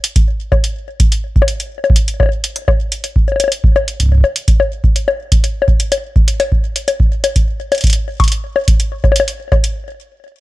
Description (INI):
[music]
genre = IDM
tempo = 125 BPM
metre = 4/4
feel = straight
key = none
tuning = none
[part]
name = electronic hi-hat and bongos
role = drums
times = 0.0-9.7 s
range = none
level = -16 LUFS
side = left 4 dB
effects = small room ambience, digital delay
[part]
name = electronic kick drum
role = drums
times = 0.2-9.6 s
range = none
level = -12 LUFS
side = equal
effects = small room ambience
[sound]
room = little or no reverb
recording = none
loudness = -12 LUFS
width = side -17 dB against mid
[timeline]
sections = 0.0-10.4 A section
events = stop 9.8-10.4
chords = none